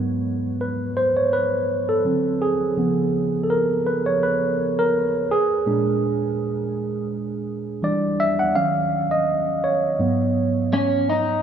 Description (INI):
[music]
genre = R&B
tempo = 83 BPM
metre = 4/4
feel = swing 54% on 16ths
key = G# dorian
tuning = A4 = 440 Hz
[part]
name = tine electric piano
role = accompaniment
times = 0.0-11.4 s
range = G#2 to F#5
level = -20 LUFS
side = right 1 dB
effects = none
[part]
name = electric guitar through a small old amp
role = melody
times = 10.7-11.4 s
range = C#4 to D#4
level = -19 LUFS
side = equal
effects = spring reverb
[sound]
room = moderate huge ambient reverb, RT60 6.5 s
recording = small room ambience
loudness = -19 LUFS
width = side -8 dB against mid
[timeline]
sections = 0.0-11.4 A section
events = tine electric piano solo 0.0-11.4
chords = 0.0 G#m7; 2.0 D7; 2.8 C#7; 5.3 A#7; 7.8 Em7; 8.5 D#m7; 10.0 G#m7